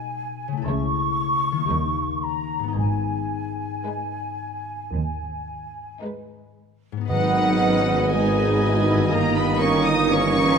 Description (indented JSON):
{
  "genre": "classical",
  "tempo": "53-62 BPM",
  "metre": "4/4",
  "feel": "rubato",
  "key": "G# minor",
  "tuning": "A4 = 440 Hz",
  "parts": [
    { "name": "rich symphonic violin section", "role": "melody", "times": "0.0-10.6 s", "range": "A#4 to D#6", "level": "-28 LUFS", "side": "left 2 dB", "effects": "none" },
    { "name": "mellow flute section", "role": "second line", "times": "0.0-10.6 s", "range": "F#5 to D#6", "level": "-28 LUFS", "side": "right 1 dB", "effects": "none" },
    { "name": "warm symphonic violin section", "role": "second line", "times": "0.0-10.6 s", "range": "D#4 to D#5", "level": "-31 LUFS", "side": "left 2 dB", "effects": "none" },
    { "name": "dark studio viola section", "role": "accompaniment", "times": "0.0-10.6 s", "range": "D#3 to E4", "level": "-30 LUFS", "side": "right 3 dB", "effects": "none" },
    { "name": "concert harp", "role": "arpeggios", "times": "0.0-10.6 s", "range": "G2 to D#5", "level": "-29 LUFS", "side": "left 11 dB", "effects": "none" },
    { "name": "warm symphonic cello section", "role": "bass", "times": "0.7-10.6 s", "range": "D#2 to D#4", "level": "-27 LUFS", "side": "right 3 dB", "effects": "none" },
    { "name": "warm symphonic double bass section", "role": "bass", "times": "0.7-10.6 s", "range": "G1 to D#2", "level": "-28 LUFS", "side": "right 3 dB", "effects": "none" },
    { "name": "bright clarinet", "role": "second line", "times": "7.1-10.6 s", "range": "D#4", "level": "-30 LUFS", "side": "equal", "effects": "none" },
    { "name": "bright oboe", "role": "second line", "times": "7.1-10.6 s", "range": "D#5", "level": "-30 LUFS", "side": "equal", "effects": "none" },
    { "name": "mellow bassoon", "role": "accompaniment", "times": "7.1-10.6 s", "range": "A#3 to B3", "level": "-28 LUFS", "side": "right 2 dB", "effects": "none" },
    { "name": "dark trombone section", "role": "sustained chords", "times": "7.1-10.6 s", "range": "D#3 to B3", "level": "-28 LUFS", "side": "right 5 dB", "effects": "none" },
    { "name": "warm French horn section", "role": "sustained chords", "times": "7.1-10.6 s", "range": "F#4 to B4", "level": "-28 LUFS", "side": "left 5 dB", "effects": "none" },
    { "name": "warm tuba", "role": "bass", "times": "7.1-10.6 s", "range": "G1 to G#1", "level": "-28 LUFS", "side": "right 4 dB", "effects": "none" },
    { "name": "timpani", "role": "percussion", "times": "7.1-8.6 s", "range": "G#2", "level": "-31 LUFS", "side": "right 4 dB", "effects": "none" }
  ],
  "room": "moderate scoring stage reverb, RT60 1.7 s",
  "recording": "none",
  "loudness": "-20 LUFS",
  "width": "side -6 dB against mid",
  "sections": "0.0-7.1 A section; 7.1-10.6 A section",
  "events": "none",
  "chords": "0.0 G#m/B; 0.7 A/C#; 1.7 D#7; 2.8 G#m; 9.1 D#/G"
}